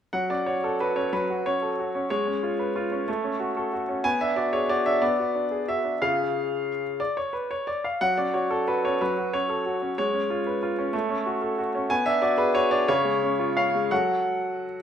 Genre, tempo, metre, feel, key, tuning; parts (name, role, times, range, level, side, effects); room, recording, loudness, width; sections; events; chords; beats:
classical-period piano sonatina; 61 BPM (dotted quarters); 6/8; rubato; F# minor; A4 = 440 Hz
clear baby grand piano; solo; 0.1-14.8 s; C#3 to G#5; -23 LUFS; equal
moderate recital hall reverb, RT60 1.5 s; minimal, uncompressed stereo recording; -23 LUFS; side -8 dB against mid
0.1-14.8 A section
0.1 F#m; 2.1 C#7/G#; 3.1 F#m/A; 4.0 G#m7b5/B; 6.0 C#; 8.0 F#m; 10.0 C#7/G#; 10.9 F#m/A; 11.9 G#m7b5/B; 12.9 C#; 13.9 F#m
| 0.13 1.12 | 2.10 3.08 | 4.05 5.02 | 6.01 7.00 | 8.01 9.00 | 9.98 10.94 | 11.90 12.88 | 13.91